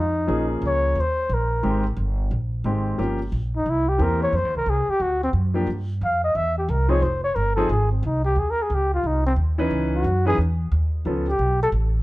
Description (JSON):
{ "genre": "jazz", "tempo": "178 BPM", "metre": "4/4", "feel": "swing 64% on 8ths", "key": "unclear", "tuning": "A4 = 440 Hz", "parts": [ { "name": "trumpet with bucket mute", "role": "melody", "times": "0.0-11.7 s", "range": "C4 to F5", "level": "-23 LUFS", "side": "left 1 dB", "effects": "plate reverb" }, { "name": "upright bass", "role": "bass", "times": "0.0-12.0 s", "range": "F1 to G2", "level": "-23 LUFS", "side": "equal", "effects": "none" }, { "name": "clear concert grand piano", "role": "accompaniment", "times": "0.3-11.3 s", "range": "Eb3 to B4", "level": "-25 LUFS", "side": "left 1 dB", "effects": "none" } ], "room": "light reverb", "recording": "dark, warm production", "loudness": "-20 LUFS", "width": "side -18 dB against mid", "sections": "0.0-9.7 A section; 9.7-12.0 B section", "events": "none", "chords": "0.3 Bbm7; 1.0 Eb5; 1.6 Abmaj7; 3.0 Gm7b5; 3.7 C7; 4.3 F5; 5.0 D; 5.7 Ebadd9 (rootless); 6.3 C; 7.0 Fm; 8.4 Cm; 9.7 C#m9; 11.1 C#7b13" }